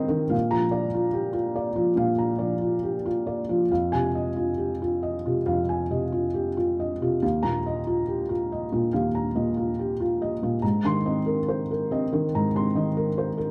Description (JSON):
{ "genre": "neoclassical minimalist piano", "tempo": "70 BPM", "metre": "4/4", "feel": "rubato", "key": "Eb major", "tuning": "A4 = 440 Hz", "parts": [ { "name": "felt-muted upright piano", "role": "solo", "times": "0.0-13.5 s", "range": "Eb2 to Eb7", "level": "-25 LUFS", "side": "equal", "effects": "none" } ], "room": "moderate spring reverb, RT60 1.5 s", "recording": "dark, warm production", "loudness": "-25 LUFS", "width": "mono", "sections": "0.0-13.5 A section", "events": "none", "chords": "0.3 Bb; 3.7 Fm7; 7.2 Ebsus2; 10.6 Abadd9", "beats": "| 0.34 1.16 1.99 2.84 | 3.70 4.58 5.46 6.34 | 7.23 8.09 8.95 9.79 | 10.63 11.48 12.32 13.16" }